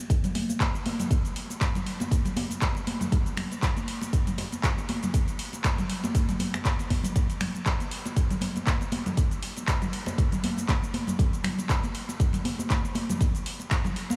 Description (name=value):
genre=house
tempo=119 BPM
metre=4/4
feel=swing 56% on 16ths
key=none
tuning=none
part: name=afro-pop drum kit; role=drums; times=0.0-14.2 s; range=cabasa, finger snaps, handclaps, hi-hat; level=-36 LUFS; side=equal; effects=none
part: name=electronic kick drum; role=drums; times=0.1-13.8 s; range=none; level=-29 LUFS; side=equal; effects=none
part: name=congas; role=percussion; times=0.2-14.2 s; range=none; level=-34 LUFS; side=equal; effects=none
room=moderate huge ambient reverb, RT60 7.2 s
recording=dreamy mix soaked in reverb, studio reverb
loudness=-28 LUFS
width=mono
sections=0.0-14.2 A section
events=none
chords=none